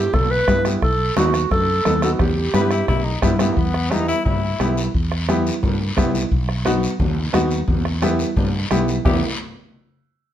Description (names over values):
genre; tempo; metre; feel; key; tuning
latin, cumbia; 175 BPM; 4/4; straight; E harmonic minor; A4 = 441 Hz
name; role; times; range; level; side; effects
warm clarinet; melody; 0.0-3.2 s; F#4 to B4; -20 LUFS; right 2 dB; none
clear upright piano; accompaniment; 0.0-9.2 s; B3 to A4; -23 LUFS; right 1 dB; none
mellow fretless electric bass; bass; 0.0-9.2 s; B1 to G2; -22 LUFS; right 1 dB; none
bombo; percussion; 0.1-9.1 s; none; -23 LUFS; equal; none
congas; percussion; 0.1-9.1 s; none; -25 LUFS; left 3 dB; none
guiro; percussion; 0.1-9.1 s; none; -32 LUFS; left 4 dB; none
clear tenor saxophone; second line; 2.5-4.9, 9.1-9.2 s; A#3 to B4; -25 LUFS; left 5 dB; none
room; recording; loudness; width
moderate studio reverb, RT60 0.8 s; none; -17 LUFS; side -11 dB against mid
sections
0.0-3.6 A section; 3.6-9.1 B section; 9.1-10.3 C section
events
none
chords
0.0 Em; 0.8 B7; 2.2 Em; 6.3 B; 7.7 Em